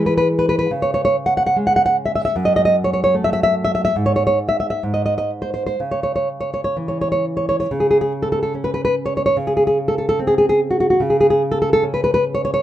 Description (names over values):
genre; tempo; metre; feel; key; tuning
romantic piece for solo classical guitar; 61-76 BPM; 2/4; rubato; C# minor; A4 = 439 Hz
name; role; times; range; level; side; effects
nylon-string guitar; solo; 0.0-12.6 s; F#2 to F#5; -16 LUFS; equal; none
room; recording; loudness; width
light reverb; minimal, uncompressed stereo recording; -16 LUFS; side -12 dB against mid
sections
0.0-7.7 A section; 7.7-12.6 B section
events
none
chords
0.0 E; 0.7 C#5; 2.4 F#m; 4.0 N.C.; 5.8 C#m; 7.7 N.C.; 9.4 G#add11/C#; 11.0 N.C.